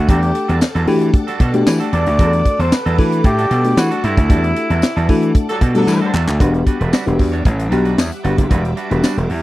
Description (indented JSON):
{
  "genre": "early-eighties boogie funk",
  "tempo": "114 BPM",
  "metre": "4/4",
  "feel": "straight",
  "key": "E minor",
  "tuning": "A4 = 440 Hz",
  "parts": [
    { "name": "dark cor anglais", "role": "melody", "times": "0.0-5.6 s", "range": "E4 to D5", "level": "-20 LUFS", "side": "equal", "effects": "none" },
    { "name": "string machine, violins", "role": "sustained chords", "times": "0.0-9.4 s", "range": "G3 to D6", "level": "-30 LUFS", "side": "equal", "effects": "ensemble chorus" },
    { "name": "gritty slap bass", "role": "bass", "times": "0.0-9.4 s", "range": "E1 to E3", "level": "-17 LUFS", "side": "equal", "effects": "overdrive" },
    { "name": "mellow FM electric piano", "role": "accompaniment", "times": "0.1-9.2 s", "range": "G3 to F#5", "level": "-19 LUFS", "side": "left 2 dB", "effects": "chorus" },
    { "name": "clean electric guitar", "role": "riff", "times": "0.1-9.3 s", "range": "G3 to C#5", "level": "-25 LUFS", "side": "right 6 dB", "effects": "wide subtle chorus" },
    { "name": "tight funk drum kit", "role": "drums", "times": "0.1-9.4 s", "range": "handclaps, hi-hat, kick drum, snare drum", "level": "-15 LUFS", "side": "equal", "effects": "none" },
    { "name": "tambourine", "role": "percussion", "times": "0.6-9.2 s", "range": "none", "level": "-32 LUFS", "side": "left 10 dB", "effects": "none" },
    { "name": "clear horn section", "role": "second line", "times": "5.5-6.1 s", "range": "F#3 to A4", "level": "-21 LUFS", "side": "left 2 dB", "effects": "none" }
  ],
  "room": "little or no reverb",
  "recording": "dry, close 1970s-style studio recording",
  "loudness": "-13 LUFS",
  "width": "side -16 dB against mid",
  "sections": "0.0-6.4 A section; 6.4-9.4 B section",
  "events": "band accent 4.3-6.4; drum fill 5.9-6.4",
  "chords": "0.0 Em11; 6.4 Em9"
}